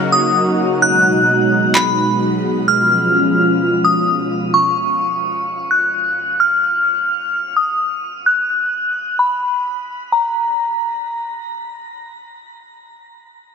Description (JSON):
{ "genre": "hip hop, atmospheric cloud-rap", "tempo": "129 BPM", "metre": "4/4", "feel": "half-time", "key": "unclear", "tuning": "A4 = 440 Hz", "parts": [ { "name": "glassy synth bell", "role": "melody", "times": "0.0-11.5 s", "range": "A#5 to F#6", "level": "-15 LUFS", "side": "left 1 dB", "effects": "chorus, low-pass filter, ping-pong delay" }, { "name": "sweeping resonant pad", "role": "sustained chords", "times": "0.0-4.5 s", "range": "B2 to F#4", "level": "-18 LUFS", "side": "right 1 dB", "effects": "chorus, low-pass filter" }, { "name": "electronic handclaps", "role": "drums", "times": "1.8-1.9 s", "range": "none", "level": "-30 LUFS", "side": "right 1 dB", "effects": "none" } ], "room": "light reverb, digital ambience", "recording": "none", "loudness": "-14 LUFS", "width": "side -6 dB against mid", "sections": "0.0-10.1 A section; 10.1-13.5 B section", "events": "break 0.0-2.7; filter sweep 0.0-10.1; kick muted 0.8-2.7", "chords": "0.0 D#m7; 0.8 G#m7; 2.7 C#7; 4.5 N.C.", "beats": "0.35 | 0.82 1.28 1.75 2.21 | 2.68 3.15 3.61 4.08 | 4.54 5.01 5.47 5.94 | 6.40 6.87 7.33 7.80 | 8.26 8.73 9.19 9.66 | 10.12 10.59 11.05" }